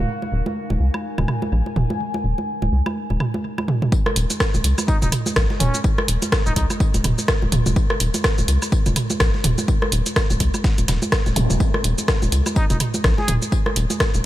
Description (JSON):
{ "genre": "minimal techno", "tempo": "125 BPM", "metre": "4/4", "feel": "swing 58% on 16ths", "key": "unclear", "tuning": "A4 = 440 Hz", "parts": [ { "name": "rubbery square bass", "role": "bass", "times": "0.0-14.2 s", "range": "Eb1 to Db2", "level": "-20 LUFS", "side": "equal", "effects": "sidechain pumping" }, { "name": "warbly tape-like pad", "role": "texture", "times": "0.0-4.0 s", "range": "Eb4 to Ab5", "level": "-31 LUFS", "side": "equal", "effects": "chorus, built-in reverb, phaser, sidechain pumping" }, { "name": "electronic congas, woodblock and toms", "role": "percussion", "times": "0.2-14.2 s", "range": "none", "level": "-24 LUFS", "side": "right 2 dB", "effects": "tape echo" }, { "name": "electronic kick drum", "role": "drums", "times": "3.9-14.1 s", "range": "none", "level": "-20 LUFS", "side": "equal", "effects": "none" }, { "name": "electronic tambourine and snare drum", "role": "drums", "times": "3.9-14.1 s", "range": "none", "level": "-35 LUFS", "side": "left 3 dB", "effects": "overdrive, high-pass filter on perc, high-pass filter on snare" }, { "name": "punchy analog drum machine", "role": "drums", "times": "4.1-14.2 s", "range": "hi-hat, rim click, shaker", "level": "-23 LUFS", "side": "equal", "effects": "none" }, { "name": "trumpet with plunger mute", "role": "melody", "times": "4.9-6.7, 12.6-13.3 s", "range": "Db4 to Ab4", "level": "-32 LUFS", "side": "equal", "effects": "tape echo" }, { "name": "zap", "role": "sound effects", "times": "11.4-11.5 s", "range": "none", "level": "-32 LUFS", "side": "equal", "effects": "none" } ], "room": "light reverb", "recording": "none", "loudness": "-18 LUFS", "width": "side -14 dB against mid", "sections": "0.0-3.9 A section; 3.9-14.3 B section", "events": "drop 3.9-14.3", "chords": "0.0 Eb5" }